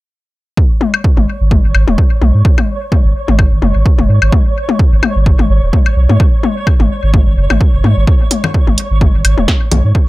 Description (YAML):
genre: minimal techno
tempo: 128 BPM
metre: 4/4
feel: swing 55% on 16ths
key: unclear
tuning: A4 = 442 Hz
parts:
  - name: electronic kick drum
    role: drums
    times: 0.6-10.1 s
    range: none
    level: -11 LUFS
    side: equal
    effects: none
  - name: flickering grainy texture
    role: texture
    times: 0.9-10.1 s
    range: C#5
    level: -24 LUFS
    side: right 3 dB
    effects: built-in reverb, sidechain pumping
  - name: electronic toms, woodblock and congas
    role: percussion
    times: 0.8-9.8 s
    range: none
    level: -17 LUFS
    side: left 5 dB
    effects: dub echo
  - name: saturated sub bass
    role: bass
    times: 1.2-9.9 s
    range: D#1 to G#2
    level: -11 LUFS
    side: equal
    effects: sidechain pumping
  - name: punchy analog drum machine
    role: drums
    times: 8.3-9.8 s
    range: hi-hat, snare drum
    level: -16 LUFS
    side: right 2 dB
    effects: low-pass filter on hats, low-pass filter on snare
room: little or no reverb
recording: none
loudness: -9 LUFS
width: side -19 dB against mid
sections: 0.6-10.1 A section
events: none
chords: none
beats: | 0.57 1.04 1.51 1.98 | 2.45 2.92 3.39 3.86 | 4.33 4.79 5.26 5.73 | 6.20 6.67 7.14 7.61 | 8.07 8.54 9.01 9.48 | 9.95